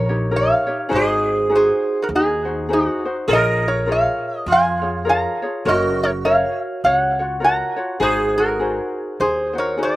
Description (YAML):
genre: Hawaiian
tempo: 102 BPM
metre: 4/4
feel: swing 60% on 8ths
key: unclear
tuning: A4 = 440 Hz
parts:
  - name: metal-body resonator slide guitar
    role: melody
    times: 0.0-10.0 s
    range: Eb4 to Bb5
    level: -19 LUFS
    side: equal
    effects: slapback echo
  - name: sitar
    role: second line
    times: 0.0-10.0 s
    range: F4 to Bb4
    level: -23 LUFS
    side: right 3 dB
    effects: slapback echo
  - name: ukulele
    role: accompaniment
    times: 0.0-10.0 s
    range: Eb4 to Db5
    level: -24 LUFS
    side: left 2 dB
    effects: none
  - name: upright bass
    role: bass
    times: 0.0-10.0 s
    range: Gb1 to F2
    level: -27 LUFS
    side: equal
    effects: none
room: little or no reverb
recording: recorded outdoors, with no room sound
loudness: -16 LUFS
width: side -17 dB against mid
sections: 0.0-10.0 A section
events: none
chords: 0.0 Eb7; 0.9 Ab7; 3.3 Bbm7; 5.7 Gbmaj7; 8.0 Ab7